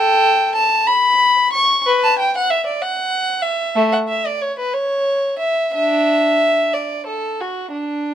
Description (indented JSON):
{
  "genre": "classical, baroque-style suite movement for unaccompanied violin",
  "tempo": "59-65 BPM (dotted quarters)",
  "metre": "12/8",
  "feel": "rubato",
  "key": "D major",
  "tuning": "A4 = 440 Hz",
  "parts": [
    { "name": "warm violin", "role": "solo", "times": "0.0-8.1 s", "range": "A3 to C#6", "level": "-15 LUFS", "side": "equal", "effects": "none" }
  ],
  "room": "light reverb",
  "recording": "minimal, uncompressed stereo recording",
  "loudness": "-15 LUFS",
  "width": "side -10 dB against mid",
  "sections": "0.0-8.1 A section",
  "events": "none",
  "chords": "none",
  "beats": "0.87 | 1.85 2.80 3.75 4.70 | 5.70 6.71 7.70"
}